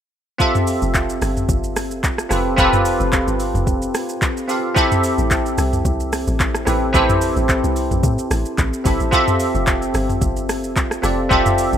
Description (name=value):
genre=amapiano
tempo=110 BPM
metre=4/4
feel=swing 55% on 16ths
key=unclear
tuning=A4 = 440 Hz
part: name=bell-like tine electric piano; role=accompaniment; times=0.4-11.8 s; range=C4 to F5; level=-18 LUFS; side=equal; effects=analog chorus
part: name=smooth R&B drum kit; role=drums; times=0.4-11.8 s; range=handclaps, hi-hat, kick drum, rim click, shaker, toms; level=-20 LUFS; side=equal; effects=overdrive
part: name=deep log drum bass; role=bass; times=0.8-11.8 s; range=F1 to A2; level=-22 LUFS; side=equal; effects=none
room=little or no reverb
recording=rough home demo mix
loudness=-16 LUFS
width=side -9 dB against mid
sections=0.4-11.8 A section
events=drop 0.4-11.8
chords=0.4 Fmaj9; 4.8 Am7; 9.1 Fmaj9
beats=| 0.40 0.94 1.49 2.04 | 2.58 3.13 3.67 4.22 | 4.76 5.31 5.85 6.40 | 6.94 7.49 8.04 8.58 | 9.13 9.67 10.22 10.76 | 11.31